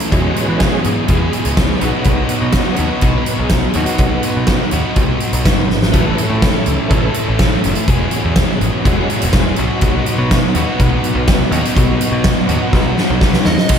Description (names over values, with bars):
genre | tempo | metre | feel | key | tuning
classic rock | 124 BPM | 4/4 | straight | B mixolydian | A4 = 440 Hz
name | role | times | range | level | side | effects
overdriven electric guitar | riff | 0.0-13.8 s | E2 to A4 | -18 LUFS | left 1 dB | spring reverb, slapback echo
huge arena drum kit | drums | 0.0-13.8 s | crash cymbal, hi-hat, kick drum, snare drum | -15 LUFS | equal | none
bright tonewheel organ | sustained chords | 0.1-13.8 s | E3 to F#5 | -23 LUFS | right 1 dB | overdrive, chorus vibrato, fast rotary speaker
modern bright picked electric bass | bass | 0.1-13.8 s | E1 to E3 | -19 LUFS | equal | none
fuzz lead guitar | melody | 13.5-13.8 s | D#5 | -20 LUFS | right 2 dB | distortion
room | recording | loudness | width
light reverb, studio reverb | none | -12 LUFS | side -8 dB against mid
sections
0.0-13.7 A section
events
drum fill 5.7, 12.7-13.7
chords
0.1 E6; 1.8 B; 5.9 A; 7.9 E6; 9.6 B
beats
| 0.12 0.60 1.09 1.57 | 2.06 2.54 3.03 3.52 | 4.00 4.49 4.97 5.46 | 5.94 6.43 6.91 7.40 | 7.88 8.37 8.86 9.34 | 9.82 10.31 10.79 11.28 | 11.77 12.25 12.73 13.22 | 13.70